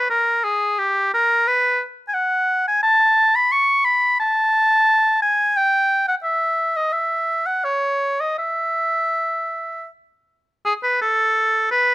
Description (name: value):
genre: classical, baroque-style fantasia for unaccompanied oboe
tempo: 77-90 BPM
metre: 3/4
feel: rubato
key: unclear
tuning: A4 = 440 Hz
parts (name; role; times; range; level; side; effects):
- clear oboe; solo; 0.0-11.9 s; G4 to C#6; -16 LUFS; equal; none
room: little or no reverb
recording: close, detailed microphones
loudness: -16 LUFS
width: side -18 dB against mid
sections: 0.0-10.7 A section; 10.7-11.9 A section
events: none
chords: none